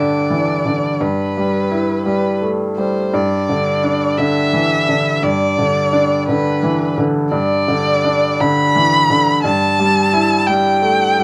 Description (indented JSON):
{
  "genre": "neoclassical piano and strings",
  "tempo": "57 BPM (dotted quarters)",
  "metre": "6/8",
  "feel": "rubato",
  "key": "G major",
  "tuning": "A4 = 439 Hz",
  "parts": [
    { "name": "warm violin", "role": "melody", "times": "0.0-11.2 s", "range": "B4 to B5", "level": "-19 LUFS", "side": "equal", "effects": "none" },
    { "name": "bright upright piano", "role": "accompaniment", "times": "0.0-11.2 s", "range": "G2 to E4", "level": "-18 LUFS", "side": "equal", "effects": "none" }
  ],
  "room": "moderate large studio reverb, RT60 1.0 s",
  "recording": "none",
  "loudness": "-16 LUFS",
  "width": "mono",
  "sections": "0.0-11.2 A section",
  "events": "none",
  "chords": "0.0 G5; 1.0 Em/G; 3.1 G5; 9.4 Em/G"
}